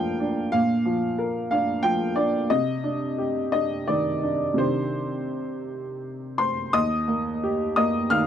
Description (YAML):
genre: neoclassical minimalist piano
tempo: 83-92 BPM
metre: 3/4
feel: rubato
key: C minor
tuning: A4 = 441 Hz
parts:
  - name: warm upright piano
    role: solo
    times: 0.0-8.3 s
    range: Eb2 to F6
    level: -22 LUFS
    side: equal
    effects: none
room: little or no reverb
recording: dry, close 1970s-style studio recording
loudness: -22 LUFS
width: side -9 dB against mid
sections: 0.0-6.7 A section; 6.7-8.3 B section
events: none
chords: 0.0 Bb; 2.5 Cmadd9; 6.7 Eb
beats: | 0.53 1.19 1.84 | 2.50 3.19 3.88 | 4.59 5.31 6.03 | 6.74 7.42 8.10